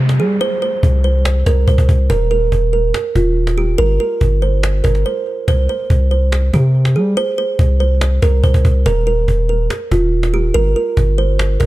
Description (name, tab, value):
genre	hip hop, trap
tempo	142 BPM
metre	4/4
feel	half-time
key	C minor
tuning	A4 = 441 Hz
part	kalimba	melody	0.0-11.7 s	F4 to C5	-18 LUFS	right 3 dB	tape echo
part	long sustained 808-style bass	bass	0.0-11.7 s	Eb1 to G3	-14 LUFS	equal	none
part	downlifter	sound effects	0.0-2.1 s	none	-29 LUFS	equal	none
part	cajon	drums	0.1-11.7 s	none	-20 LUFS	equal	none
room	little or no reverb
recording	dark, warm production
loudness	-12 LUFS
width	side -17 dB against mid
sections	0.0-11.7 A section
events	break 5.1-5.5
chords	0.0 C5; 2.1 Eb5; 3.8 Gm; 5.5 C5; 8.9 Eb5; 10.5 Gm